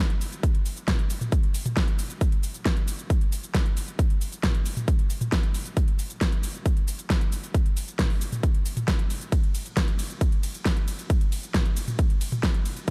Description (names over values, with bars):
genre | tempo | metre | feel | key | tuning
trance | 135 BPM | 4/4 | straight | none | none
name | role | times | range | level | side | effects
big-room dance drum kit | drums | 0.1-12.9 s | hi-hat, ride cymbal, shaker, snare drum, toms | -33 LUFS | equal | overdrive
electronic kick drum | drums | 0.4-12.9 s | none | -26 LUFS | equal | overdrive
room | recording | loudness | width
light reverb, digital ambience | none | -26 LUFS | mono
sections
0.0-12.9 A section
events
none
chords
none